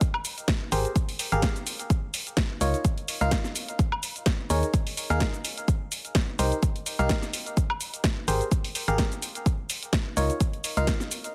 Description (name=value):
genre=piano house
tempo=127 BPM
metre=4/4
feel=swing 55% on 16ths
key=unclear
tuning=A4 = 439 Hz
part: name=electronic kick drum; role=drums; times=0.0-11.0 s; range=none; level=-28 LUFS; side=equal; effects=none
part: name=house drum kit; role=drums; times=0.0-11.3 s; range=hi-hat, shaker, snare drum, woodblock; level=-33 LUFS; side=equal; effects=none
part: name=barking FM electric piano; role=riff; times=0.7-10.9 s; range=Eb4 to F5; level=-32 LUFS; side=equal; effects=chorus, sidechain pumping, digital delay
part: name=organ-like FM bass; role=bass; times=0.7-10.9 s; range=Ab1 to Eb2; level=-29 LUFS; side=equal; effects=sidechain pumping
room=little or no reverb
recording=heavily compressed radio sound, multiband compression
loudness=-27 LUFS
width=mono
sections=0.0-11.3 A section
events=none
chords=0.0 Abmaj7sus2; 1.9 Db69; 3.8 Ebsus4; 5.7 Cm7; 7.6 Abmaj7sus2; 9.5 Db69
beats=| 0.01 0.48 0.96 1.43 | 1.90 2.37 2.85 3.32 | 3.79 4.26 4.74 5.21 | 5.68 6.15 6.63 7.10 | 7.57 8.04 8.52 8.99 | 9.46 9.93 10.40 10.88